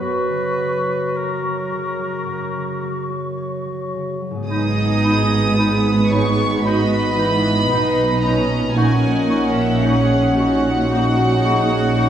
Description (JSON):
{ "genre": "cinematic, emotional film score for orchestra", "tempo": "53-57 BPM", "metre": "4/4", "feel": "rubato", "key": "unclear", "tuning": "A4 = 442 Hz", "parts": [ { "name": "small flute group", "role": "second line", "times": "0.0-12.1 s", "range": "B5 to C#6", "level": "-29 LUFS", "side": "left 3 dB", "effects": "none" }, { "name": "warm clarinet", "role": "second line", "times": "0.0-12.1 s", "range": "D#4 to F#4", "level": "-28 LUFS", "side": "equal", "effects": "none" }, { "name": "warm oboe", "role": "second line", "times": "0.0-3.4 s", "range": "A#4 to B4", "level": "-26 LUFS", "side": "right 1 dB", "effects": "none" }, { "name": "concert harp", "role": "arpeggios", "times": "0.0-12.1 s", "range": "F#2 to C#5", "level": "-29 LUFS", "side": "left 2 dB", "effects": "none" }, { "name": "warm studio violin section", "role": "melody", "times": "4.5-12.1 s", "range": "E5 to D#6", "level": "-24 LUFS", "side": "equal", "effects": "none" }, { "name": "warm studio violin section", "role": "second line", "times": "4.5-12.1 s", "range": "F#4 to F#5", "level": "-24 LUFS", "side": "equal", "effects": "none" }, { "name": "warm studio viola section", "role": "accompaniment", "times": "4.5-12.1 s", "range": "E3 to G#4", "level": "-22 LUFS", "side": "right 2 dB", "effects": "none" }, { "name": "mellow French horn section", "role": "sustained chords", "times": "4.5-12.1 s", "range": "B3 to D#4", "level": "-22 LUFS", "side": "left 2 dB", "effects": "none" }, { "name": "dark studio double bass section", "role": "bass", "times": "4.5-12.1 s", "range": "G#1 to B1", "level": "-22 LUFS", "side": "right 3 dB", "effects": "none" }, { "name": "warm studio cello section", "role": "bass", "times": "4.5-12.1 s", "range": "G#2 to B2", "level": "-22 LUFS", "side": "right 1 dB", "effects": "none" } ], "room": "wet scoring stage reverb, RT60 1.8 s", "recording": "small room reverb", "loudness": "-16 LUFS", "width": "side -9 dB against mid", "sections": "0.0-4.5 A section; 4.5-12.1 A section", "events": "none", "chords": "0.0 F#; 4.5 G#m; 8.8 D#m7/A#" }